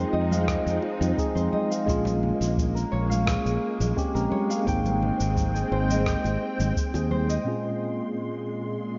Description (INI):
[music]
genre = sunset chillout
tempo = 86 BPM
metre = 4/4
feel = straight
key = Bb dorian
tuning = A4 = 440 Hz
[part]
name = mellow tine electric piano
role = accompaniment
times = 0.0-9.0 s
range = Bb2 to G5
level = -32 LUFS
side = equal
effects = low-pass filter, diffuse ambient delay
[part]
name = soft string machine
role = sustained chords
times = 0.0-9.0 s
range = Bb2 to C6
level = -33 LUFS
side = equal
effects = ensemble chorus
[part]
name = concert harp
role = arpeggios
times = 0.0-9.0 s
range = G4 to F5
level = -35 LUFS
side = equal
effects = diffuse ambient delay
[part]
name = fingered electric bass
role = bass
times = 0.0-7.4 s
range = Ab1 to F2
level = -29 LUFS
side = equal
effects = none
[part]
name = bongos and congas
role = percussion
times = 0.1-7.3 s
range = none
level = -38 LUFS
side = equal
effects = none
[part]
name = electronic shaker and rim click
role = drums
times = 0.3-7.4 s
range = none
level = -38 LUFS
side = equal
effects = none
[part]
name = electronic kick drum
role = drums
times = 0.5-6.9 s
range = none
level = -32 LUFS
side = equal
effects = none
[sound]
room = moderate plate reverb, RT60 2.3 s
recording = dreamy mix soaked in reverb, nothing above 7.5 kHz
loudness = -26 LUFS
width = mono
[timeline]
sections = 0.0-7.5 A section; 7.5-9.0 B section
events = filter sweep on tine electric piano 0.0-7.5, 7.5-9.0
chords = 0.0 Fm7; 1.9 Bbm7; 4.7 Abmaj7; 7.5 Bbm9